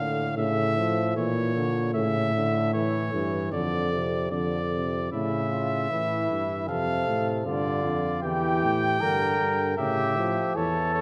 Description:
classical, imitative canzona for brass ensemble; 77 BPM; 4/4; straight; A4 = 438 Hz
clear trumpet; melody; 0.0-11.0 s; C#5 to G5; -32 LUFS; equal
warm trombone; accompaniment; 0.0-11.0 s; A2 to F3; -33 LUFS; equal
dark bass trombone; bass; 0.0-11.0 s; E2 to D3; -31 LUFS; equal
mellow flugelhorn; second line; 5.1-11.0 s; E4 to Bb4; -31 LUFS; equal
wet recital hall reverb, RT60 1.6 s; -26 LUFS; mono
0.0-5.1 A section; 5.1-11.0 B section
0.4 A; 3.5 Dm/F; 5.1 A; 6.7 Dm/F; 8.2 Edim; 9.8 A
0.38 1.17 | 1.95 2.74 3.53 4.32 | 5.12 5.91 6.69 7.46 | 8.23 9.01 9.78 10.56

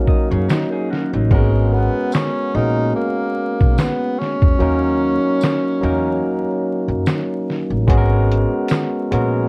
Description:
lo-fi hip hop; 73 BPM; 4/4; swing 56% on 16ths; G# minor; A4 = 442 Hz
breathy tenor saxophone; melody; 0.0-6.7 s; G#3 to D#4; -24 LUFS; equal; low-pass filter
barky tine electric piano; accompaniment; 0.0-9.5 s; F#3 to A#4; -23 LUFS; equal; cassette tape, low-pass filter
electric guitar through a small old amp; second line; 0.1-1.5 s; A#3 to D#5; -29 LUFS; equal; low-pass filter, tape echo
lo-fi sampler-style drum kit; drums; 0.1-9.3 s; handclaps, hi-hat, kick drum, snare drum; -20 LUFS; equal; vintage 12-bit sampler grit
upright bass; bass; 0.3-9.5 s; G#1 to F#2; -21 LUFS; equal
tambourine; percussion; 0.5-8.9 s; -44 LUFS; equal
moderate studio reverb, RT60 0.6 s; worn, warbling old tape, cassette tape, vinyl crackle, warbly pitch drift; -18 LUFS; mono
0.0-9.5 A section
break 0.0-7.9; kick muted 4.6-7.9
0.0 D#m7; 1.3 G#m11; 4.6 D#m7; 7.9 G#m11
0.48 | 1.31 2.13 2.95 3.77 | 4.59 5.42 6.24 7.06 | 7.88 8.70

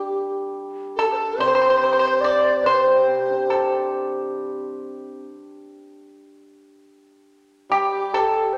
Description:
chinese traditional, Chinese chamber ensemble; 72 BPM; 2/4; rubato; A4 = 441 Hz
breathy low xiao; melody; 0.0-3.9, 7.7-8.6 s; G4 to D5; -27 LUFS; equal
mellow hollow large dizi; second line; 0.0-3.9, 7.7-8.5 s; G4 to D5; -31 LUFS; equal
pipa; second line; 0.0-3.9, 7.7-8.5 s; G4 to D5; -24 LUFS; equal
hammered dulcimer; accompaniment; 0.0-8.6 s; C3 to G4; -26 LUFS; equal
wet recital hall reverb, RT60 1.8 s; -21 LUFS; mono
0.0-8.6 A section
0.15 | 0.97 1.81 | 2.65 3.50 | 4.36 5.21 | 6.05 6.88 | 7.71 8.54

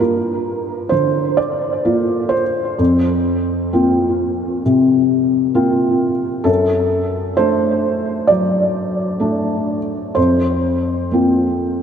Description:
neoclassical minimalist piano; 65 BPM; 4/4; rubato; A4 = 441 Hz
felt-muted upright piano; solo; 0.0-11.8 s; F2 to D5; -14 LUFS; equal; wide subtle chorus, diffuse ambient delay
wet lush hall reverb, RT60 2.8 s; dreamy mix soaked in reverb; -14 LUFS; side -8 dB against mid
0.0-11.8 A section
0.0 Gm7; 2.8 Fsus4; 6.5 D/F#; 10.2 Fsus4
0.00 0.93 1.86 | 2.79 3.73 4.66 5.57 | 6.48 7.39 8.30 9.22 | 10.17 11.11

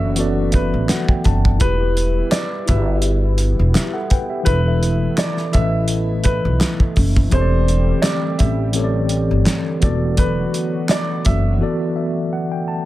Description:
hip hop, boom-bap hip-hop; 84 BPM; 4/4; swing 55% on 16ths; E minor; A4 = 443 Hz
dark upright piano; melody; 0.0-11.6 s; B4 to E5; -25 LUFS; right 1 dB; high-pass filter, low-pass filter, digital delay, plate reverb
mellow tine electric piano; accompaniment; 0.0-12.9 s; E3 to A5; -22 LUFS; left 1 dB; medium stereo tremolo, high-pass filter, low-pass filter, plate reverb
dark analog pad; sustained chords; 0.0-12.9 s; D3 to G4; -30 LUFS; equal; chorus, high-pass filter, low-pass filter, plate reverb
upright bass; bass; 0.0-11.6 s; E1 to B1; -18 LUFS; equal
cloth-damped thuddy drum kit; drums; 0.2-11.4 s; handclaps, hi-hat, kick drum, snare drum; -18 LUFS; equal
light reverb; -15 LUFS; side -16 dB against mid
0.0-12.9 A section
break 11.6-12.9
0.0 Bm7; 1.6 Em; 4.5 Asus2/E; 7.3 D7sus4/E; 9.8 Bm7/E
0.18 0.89 | 1.61 2.32 3.03 3.75 | 4.46 5.18 5.89 6.61 | 7.32 8.03 8.75 9.46 | 10.18 10.89 11.61 12.32

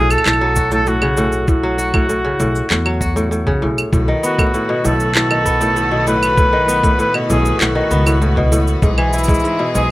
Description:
folktronica; 98 BPM; 4/4; straight; B mixolydian; A4 = 440 Hz
clear flugelhorn; melody; 0.0-9.9 s; E4 to B4; -18 LUFS; equal; ping-pong delay, plate reverb
kora; arpeggios; 0.0-9.9 s; G#2 to F#4; -18 LUFS; equal; ping-pong delay, plate reverb
upright bass; bass; 0.0-9.9 s; B1 to E2; -19 LUFS; equal; tube saturation
electronic claves, cabasa and handclaps; drums; 0.1-9.9 s; -20 LUFS; right 1 dB; overdrive
electronic kick drum; drums; 0.6-9.4 s; -18 LUFS; equal
clear string quartet; sustained chords; 3.9-9.9 s; D#3 to G#4; -26 LUFS; left 1 dB
light reverb; rough home demo mix, vinyl crackle; -13 LUFS; side -17 dB against mid
0.0-9.9 A section
0.0 F#m/B; 3.9 B7; 8.8 E/B
0.25 0.87 | 1.48 2.09 2.70 3.32 | 3.93 4.54 5.15 5.76 | 6.38 6.99 7.60 8.21 | 8.83 9.44

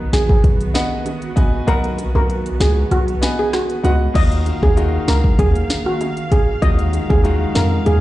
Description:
dancehall; 97 BPM; 4/4; straight; Eb minor; A4 = 439 Hz
bright grand piano; accompaniment; 0.0-8.0 s; Eb3 to Ab5; -25 LUFS; left 2 dB; sidechain pumping
warm studio string section; sustained chords; 0.0-8.0 s; Eb3 to F5; -27 LUFS; right 3 dB
hard-hitting 808-style bass; bass; 0.0-8.0 s; Bb1 to F2; -17 LUFS; equal
steel pan; melody; 0.1-8.0 s; F#4 to Eb5; -22 LUFS; equal; ping-pong delay
afro-pop drum kit; drums; 0.1-8.0 s; crash cymbal, hi-hat, kick drum, rim click, snare drum; -17 LUFS; equal
bongos; percussion; 0.8-7.7 s; -30 LUFS; right 5 dB
small room ambience; played on a big sound system in a bare room, large studio reverb, nothing above 10.9 kHz; -14 LUFS; side -16 dB against mid
0.0-4.2 A section; 4.2-8.0 B section
kick muted 1.7-4.2
0.0 B; 4.2 Ebmadd9
0.44 1.06 | 1.68 2.30 2.92 3.53 | 4.15 4.77 5.39 6.01 | 6.63 7.25 7.86

